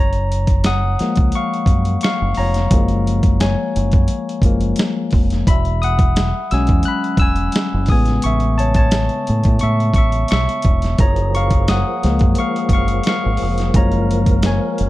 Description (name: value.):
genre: R&B, neo-soul.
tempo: 87 BPM.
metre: 4/4.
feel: swing 54% on 16ths.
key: F# major.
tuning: A4 = 440 Hz.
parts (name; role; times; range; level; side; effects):
barky tine electric piano; accompaniment; 0.0-14.9 s; C#3 to F#6; -19 LUFS; left 2 dB; none.
deep dub fingered electric bass; bass; 0.0-14.9 s; E1 to A2; -18 LUFS; equal; none.
dusty soul sampler-style drum kit; drums; 0.1-14.9 s; hi-hat, kick drum, snare drum; -17 LUFS; equal; none.
tonewheel organ; sustained chords; 11.0-14.9 s; E#3 to A#4; -26 LUFS; right 4 dB; slow rotary speaker, overdrive, chorus vibrato.
room: digital ambience.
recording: dark, warm production.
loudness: -14 LUFS.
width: side -17 dB against mid.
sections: 0.0-14.9 A section.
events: tine electric piano solo 0.0-14.9.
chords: 0.0 F#maj9; 5.5 E69; 7.9 Amaj7; 11.0 F#maj9.